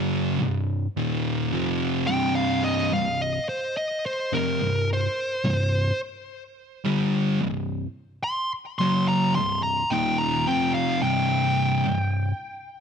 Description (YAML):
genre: metal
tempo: 54 BPM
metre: 4/4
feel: straight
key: C phrygian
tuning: A4 = 441 Hz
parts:
  - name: fuzz guitar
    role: riff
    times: 0.0-12.3 s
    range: C2 to G3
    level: -23 LUFS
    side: equal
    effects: distortion
  - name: fuzz lead guitar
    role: melody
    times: 2.1-12.8 s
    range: Bb4 to C6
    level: -26 LUFS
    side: equal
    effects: distortion, ping-pong delay
room: light reverb, digital ambience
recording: nothing above 10.4 kHz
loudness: -22 LUFS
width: side -7 dB against mid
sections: 0.0-12.8 A section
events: lead electric guitar solo 0.0-12.8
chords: 0.0 Cm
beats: 0.98 | 2.10 3.21 4.33 5.45 | 6.57 7.68 8.80 9.91 | 11.03 12.14